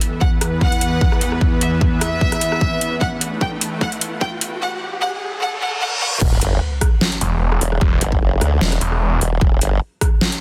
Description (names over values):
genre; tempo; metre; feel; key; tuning
heavy wobble dubstep; 150 BPM; 4/4; swing 54% on 16ths, half-time; E minor; A4 = 436 Hz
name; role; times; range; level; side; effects
supersaw pad; sustained chords; 0.0-4.6 s; E2 to B4; -25 LUFS; equal; sidechain pumping
dubstep drum kit; drums; 0.0-10.4 s; crash cymbal, hi-hat, rim click, snare drum; -24 LUFS; equal; overdrive, high-pass filter on hats, high-pass filter on snare, high-pass filter on cymbals, high-pass filter on room
riser, reverse cymbal and sub drop; sound effects; 2.7-7.8 s; none; -28 LUFS; equal; none
clear chamber violin section; melody; 0.2-6.1 s; E5 to G5; -26 LUFS; equal; dub echo
electronic kick drum; drums; 0.2-10.1 s; none; -20 LUFS; equal; overdrive
formant-sweep wobble bass; bass; 6.2-9.8 s; E1 to D2; -20 LUFS; equal; chorus, overdrive
snarling distorted saw bass; bass; 7.2-9.2 s; E1; -20 LUFS; equal; distortion, overdrive
room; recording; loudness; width
light reverb, digital ambience; dense, heavily limited modern master, high-pass filter; -19 LUFS; mono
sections
0.0-6.2 A section; 6.2-10.4 B section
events
build-up 0.0-6.2; filter sweep 0.0-6.2; riser 2.7-6.2; drum fill 3.0-4.6; reverse cymbal 5.4-6.2; drop 6.2-10.4; impact 6.2-7.8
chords
0.0 E5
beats
0.21 0.61 1.01 | 1.41 1.81 2.21 2.61 | 3.01 3.41 3.81 4.21 | 4.61 5.01 5.41 5.81 | 6.21 6.61 7.01 7.41 | 7.81 8.21 8.61 9.01 | 9.41 9.81 10.21